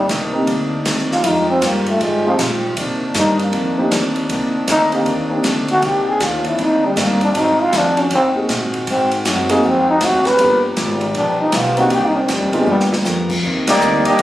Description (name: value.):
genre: jazz, big band swing.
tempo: 158 BPM.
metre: 4/4.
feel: swing 64% on 8ths.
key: C minor.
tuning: A4 = 443 Hz.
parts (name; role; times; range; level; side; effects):
growling trombone; melody; 0.0-12.8 s; Eb3 to B4; -16 LUFS; equal; none.
bright trombone section; sustained chords; 0.0-14.2 s; C3 to A#4; -23 LUFS; equal; none.
upright bass; bass; 0.0-14.2 s; G1 to C3; -24 LUFS; equal; none.
picked steel-string acoustic guitar; accompaniment; 0.1-14.2 s; Ab2 to A#4; -26 LUFS; left 1 dB; none.
open jazz drum kit; drums; 0.1-14.2 s; crash cymbal, hi-hat, kick drum, ride cymbal, snare drum; -23 LUFS; right 1 dB; none.
dark baby grand piano; accompaniment; 0.3-5.4, 8.3-13.0 s; Ab3 to Ab4; -19 LUFS; equal; none.
mellow trumpet section; melody; 13.7-14.2 s; Bb3 to Eb5; -13 LUFS; equal; none.
warm trombone section; second line; 13.7-14.2 s; G3 to G4; -20 LUFS; equal; none.
room: light reverb.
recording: recorded on a phone in the room, studio reverb, compression.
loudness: -14 LUFS.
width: side -14 dB against mid.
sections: 0.0-13.4 A section.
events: trombone solo 0.0-13.4; drum fill 12.7-13.1; band accent 13.6.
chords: 0.0 Cm9; 1.2 Fm9; 2.8 Cm9; 7.3 Ab7; 10.4 G7#9; 11.9 Cm9; 12.7 G7#9; 13.4 Cm9.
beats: 0.09 0.48 0.86 | 1.24 1.62 2.00 2.39 | 2.77 3.15 3.53 3.91 | 4.30 4.68 5.06 5.44 | 5.82 6.20 6.59 6.97 | 7.35 7.73 8.11 8.49 | 8.87 9.25 9.63 10.01 | 10.39 10.77 11.15 11.53 | 11.91 12.29 12.67 13.05 | 13.43 13.81 14.19.